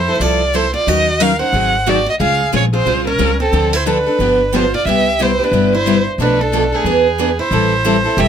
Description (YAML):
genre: acoustic string swing (jazz manouche)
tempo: 180 BPM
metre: 4/4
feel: swing 60% on 8ths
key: unclear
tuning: A4 = 441 Hz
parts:
  - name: warm violin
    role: melody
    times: 0.0-8.3 s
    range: Ab4 to Gb5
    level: -16 LUFS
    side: right 1 dB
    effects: none
  - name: picked steel-string acoustic guitar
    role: second line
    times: 0.0-8.3 s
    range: B3 to C5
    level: -22 LUFS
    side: right 3 dB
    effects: none
  - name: upright bass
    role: bass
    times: 0.0-8.3 s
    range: E1 to E2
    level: -20 LUFS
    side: equal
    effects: none
  - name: picked steel-string acoustic guitar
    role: accompaniment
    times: 0.1-8.3 s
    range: B2 to Bb4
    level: -18 LUFS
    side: left 2 dB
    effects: none
  - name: picked steel-string acoustic guitar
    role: accompaniment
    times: 0.2-8.3 s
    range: B2 to B4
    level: -24 LUFS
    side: right 11 dB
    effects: none
room: light reverb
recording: close, detailed microphones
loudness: -12 LUFS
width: side -8 dB against mid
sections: 0.0-7.5 A section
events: none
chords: 0.0 Fmaj7; 0.9 Ebm7; 1.5 Ab7; 2.2 Dbmaj7; 3.5 Dm7; 4.2 G7; 4.9 Cmaj7; 6.2 Bm7b5; 6.9 E7; 7.5 Am7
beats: 0.20 0.54 | 0.87 1.20 1.53 1.87 | 2.20 2.53 2.86 3.20 | 3.53 3.86 4.19 4.53 | 4.86 5.19 5.52 5.86 | 6.19 6.52 6.85 7.18 | 7.52 7.85 8.18